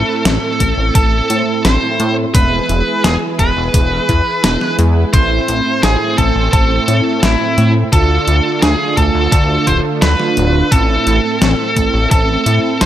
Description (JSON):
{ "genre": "synthwave", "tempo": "86 BPM", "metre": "4/4", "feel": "straight", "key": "A harmonic minor", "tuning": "A4 = 444 Hz", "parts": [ { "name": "high-gain lead guitar", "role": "melody", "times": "0.0-12.9 s", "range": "E4 to C5", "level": "-17 LUFS", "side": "equal", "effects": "distortion, digital delay" }, { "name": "soft synth bell", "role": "second line", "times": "0.0-12.9 s", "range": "E5 to C6", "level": "-25 LUFS", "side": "right 1 dB", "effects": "chorus, vintage 12-bit sampler grit, digital delay" }, { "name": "warm analog pad", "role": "sustained chords", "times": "0.0-12.9 s", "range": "D3 to B4", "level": "-22 LUFS", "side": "right 2 dB", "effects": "chorus" }, { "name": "soft round pluck", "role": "arpeggios", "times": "0.0-12.9 s", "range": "G#3 to F4", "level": "-25 LUFS", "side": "left 3 dB", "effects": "none" }, { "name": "mellow synth brass", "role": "stabs", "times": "0.0-12.9 s", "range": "A2 to C5", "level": "-20 LUFS", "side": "right 4 dB", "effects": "chorus" }, { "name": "chorused synth bass", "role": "bass", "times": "0.0-12.9 s", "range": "D1 to A2", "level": "-15 LUFS", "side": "equal", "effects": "tube saturation, sidechain pumping" }, { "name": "detuned 8-bit digital drum machine", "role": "drums", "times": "0.3-12.9 s", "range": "hi-hat, snare drum", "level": "-18 LUFS", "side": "equal", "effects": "studio reverb, gated reverb" }, { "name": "electronic kick drum", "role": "drums", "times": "0.6-12.3 s", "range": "none", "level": "-14 LUFS", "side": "equal", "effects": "studio reverb" } ], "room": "light reverb", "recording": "none", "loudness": "-11 LUFS", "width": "side -12 dB against mid", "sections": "0.0-12.9 A section", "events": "none", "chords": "0.0 Am; 2.3 E; 5.1 Am; 7.9 Dm; 10.7 Am", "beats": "0.25 0.95 1.65 | 2.35 3.04 3.74 4.44 | 5.14 5.83 6.53 7.23 | 7.93 8.62 9.32 10.02 | 10.72 11.41 12.11 12.81" }